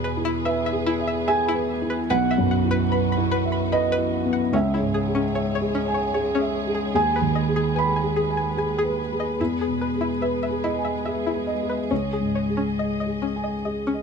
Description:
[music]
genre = neoclassical piano and strings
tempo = 73 BPM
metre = 3/4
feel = rubato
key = C# minor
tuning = A4 = 440 Hz
[part]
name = felt-muted upright piano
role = accompaniment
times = 0.0-14.0 s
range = B1 to B5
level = -22 LUFS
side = right 1 dB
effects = none
[part]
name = muted studio string section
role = sustained chords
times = 0.0-14.0 s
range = E3 to D#5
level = -30 LUFS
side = left 1 dB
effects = none
[part]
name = string-like resonator pluck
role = arpeggios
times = 0.0-14.0 s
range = C#4 to B5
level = -28 LUFS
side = left 4 dB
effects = chorus, tape echo
[sound]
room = light reverb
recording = close, detailed microphones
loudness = -21 LUFS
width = side -6 dB against mid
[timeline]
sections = 0.0-14.0 A section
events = none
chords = 0.0 E; 2.1 Bsus4; 4.5 C#m; 6.9 G#m/D#; 9.4 E; 11.9 C#sus2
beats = 0.45 1.27 | 2.09 2.91 3.72 | 4.53 5.34 6.14 | 6.94 7.75 8.57 | 9.39 10.21 11.05 | 11.90 12.78 13.65

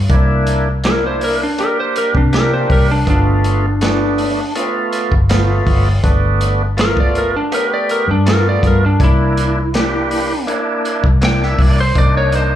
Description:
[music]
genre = straight-eighth soul blues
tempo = 81 BPM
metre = 4/4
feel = straight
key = unclear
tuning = A4 = 440 Hz
[part]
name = vintage muted fingered electric bass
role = bass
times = 0.0-12.6 s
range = G1 to C3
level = -16 LUFS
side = equal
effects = none
[part]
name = bright tonewheel organ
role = accompaniment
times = 0.1-12.5 s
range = A3 to G4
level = -19 LUFS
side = right 2 dB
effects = slow rotary speaker, overdrive, slapback echo
[part]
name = crunchy breakbeat drum kit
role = drums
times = 0.1-12.5 s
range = hi-hat, kick drum, snare drum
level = -18 LUFS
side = equal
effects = none
[part]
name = lightly driven lead guitar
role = melody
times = 0.9-12.6 s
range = D4 to G5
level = -18 LUFS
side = equal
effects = slapback echo
[sound]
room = studio ambience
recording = live gig heard through the venue's PA, club reverb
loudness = -12 LUFS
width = side -11 dB against mid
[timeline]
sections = 0.0-12.6 A section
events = none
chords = 0.1 C7; 3.1 G7; 9.0 C7; 12.0 Cm7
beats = | 0.10 0.84 1.58 2.33 | 3.07 3.81 4.55 5.29 | 6.04 6.78 7.52 8.26 | 9.00 9.74 10.48 11.22 | 11.96

